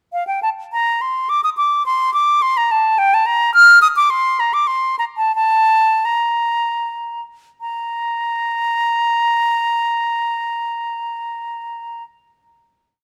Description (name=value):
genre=classical, baroque-style fantasia for unaccompanied flute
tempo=72-109 BPM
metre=3/4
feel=rubato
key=Bb major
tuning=A4 = 440 Hz
part: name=concert flute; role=solo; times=0.1-12.0 s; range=F5 to F6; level=-17 LUFS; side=equal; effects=none
room=light reverb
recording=close, detailed microphones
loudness=-16 LUFS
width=mono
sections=0.1-7.6 A section; 7.6-12.3 final note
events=slowing down 2.7-7.6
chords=none